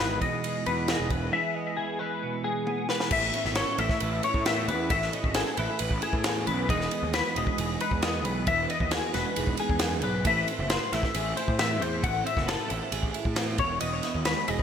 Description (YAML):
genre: math rock and midwest emo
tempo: 135 BPM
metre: 4/4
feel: straight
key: unclear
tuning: A4 = 441 Hz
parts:
  - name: twelve-string electric guitar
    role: accompaniment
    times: 0.0-14.6 s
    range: E2 to B4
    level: -33 LUFS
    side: right 6 dB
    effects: ensemble chorus
  - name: clean electric guitar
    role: arpeggios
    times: 0.0-14.6 s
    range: G#4 to F#5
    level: -29 LUFS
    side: left 5 dB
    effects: analog chorus, digital delay
  - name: fuzz picked electric bass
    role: bass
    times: 0.0-14.6 s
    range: E1 to A2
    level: -32 LUFS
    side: equal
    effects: overdrive
  - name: compact cocktail drum kit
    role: drums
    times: 0.2-14.6 s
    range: crash cymbal, kick drum, ride cymbal, snare drum, toms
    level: -30 LUFS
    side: equal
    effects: gated reverb
room: moderate plate reverb, RT60 1.2 s, small room ambience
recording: bright 1980s-style digital production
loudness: -25 LUFS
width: side -8 dB against mid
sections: 0.0-3.1 A section; 3.1-14.6 B section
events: drum fill 2.7-3.1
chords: 0.0 Emaj7; 3.1 Amaj9; 6.7 Emaj9; 10.2 Amadd9; 13.6 Emaj9